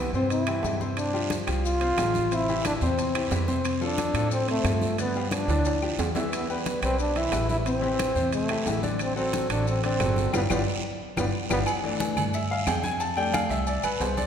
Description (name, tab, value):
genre	latin, salsa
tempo	180 BPM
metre	4/4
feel	straight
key	unclear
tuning	A4 = 440 Hz
part	breathy trombone	melody	0.0-11.6 s	A3 to F4	-28 LUFS	equal	none
part	bright baby grand piano	accompaniment	0.0-14.3 s	C3 to A5	-30 LUFS	left 4 dB	none
part	upright bass	bass	0.0-14.3 s	G1 to A2	-30 LUFS	right 1 dB	none
part	congas	percussion	0.1-14.3 s	none	-35 LUFS	left 2 dB	none
part	maracas	percussion	0.1-14.3 s	none	-42 LUFS	left 6 dB	none
part	timbales and agogo bells	percussion	0.3-14.3 s	none	-33 LUFS	right 4 dB	none
part	claves	percussion	0.5-14.0 s	none	-41 LUFS	left 6 dB	none
part	guiro	percussion	1.0-14.3 s	none	-40 LUFS	right 6 dB	none
room	wet scoring stage reverb, RT60 2.0 s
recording	recorded in a church or concert hall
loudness	-23 LUFS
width	side -8 dB against mid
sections	0.0-11.7 A section; 11.7-14.3 B section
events	drum fill 5.5-6.3, 11.0-11.7; band accent 10.3-11.7; grand piano solo 11.7-14.3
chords	0.0 C; 1.0 G7sus4; 2.3 Am7; 3.6 F6; 5.0 G7; 6.3 Em; 7.7 Am7; 9.0 D7/A; 10.3 G7; 11.7 Fmaj13; 13.0 F6